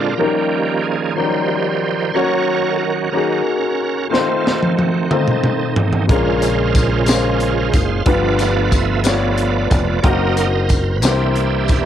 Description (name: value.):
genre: slow gospel.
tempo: 61 BPM (dotted quarters).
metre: 6/8.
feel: straight.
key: unclear.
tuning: A4 = 440 Hz.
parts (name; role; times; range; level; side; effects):
warm upright piano; accompaniment; 0.0-11.9 s; G2 to Db5; -20 LUFS; left 8 dB; cassette tape.
bright tonewheel organ; sustained chords; 0.0-11.9 s; Db3 to F5; -19 LUFS; right 8 dB; slow rotary speaker, chorus vibrato, cassette tape.
crisp fusion drum kit; drums; 4.1-11.8 s; hi-hat, kick drum, snare drum, toms; -18 LUFS; right 1 dB; none.
fingered electric bass; bass; 6.1-11.9 s; E1 to C2; -20 LUFS; equal; none.
tambourine; percussion; 6.4-11.9 s; none; -28 LUFS; left 9 dB; none.
room: light reverb, studio reverb.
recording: home recording on cassette.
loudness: -14 LUFS.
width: side -10 dB against mid.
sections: 0.0-11.9 A section.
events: tonewheel organ solo 0.0-11.9; drum fill 4.1-6.1.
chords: 0.2 Eb7; 2.2 Ebm7; 4.1 F7; 6.1 Bbm7; 8.1 G7; 10.0 Cm7b5/Gb; 11.0 C7.